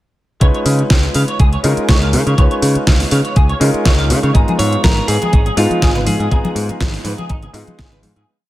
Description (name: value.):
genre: nu-disco, nu disco.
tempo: 122 BPM.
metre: 4/4.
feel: swing 54% on 16ths.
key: G# dorian.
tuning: A4 = 442 Hz.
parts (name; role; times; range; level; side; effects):
clear concert grand piano; accompaniment; 0.4-8.3 s; G#3 to A#5; -20 LUFS; left 1 dB; sidechain pumping, dub echo.
clean electric guitar; riff; 0.4-8.3 s; D#4 to E#5; -25 LUFS; equal; ensemble chorus, dub echo.
modern bright picked electric bass; bass; 0.4-8.2 s; G#1 to C#3; -16 LUFS; equal; sidechain pumping.
electronic kick drum; drums; 0.4-7.9 s; none; -12 LUFS; equal; none.
pop drum kit; drums; 0.4-8.3 s; hi-hat, snare drum; -20 LUFS; equal; overdrive.
congas; percussion; 4.5-8.1 s; none; -24 LUFS; left 2 dB; dub echo.
clean electric guitar; melody; 4.6-7.5 s; E#4 to C#5; -21 LUFS; equal; dub echo.
room: light reverb, digital ambience.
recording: echo-heavy mix.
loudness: -12 LUFS.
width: side -16 dB against mid.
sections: 0.4-8.3 groove.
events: fade-out 5.7-8.3.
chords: 0.4 C#9; 4.3 G#m69.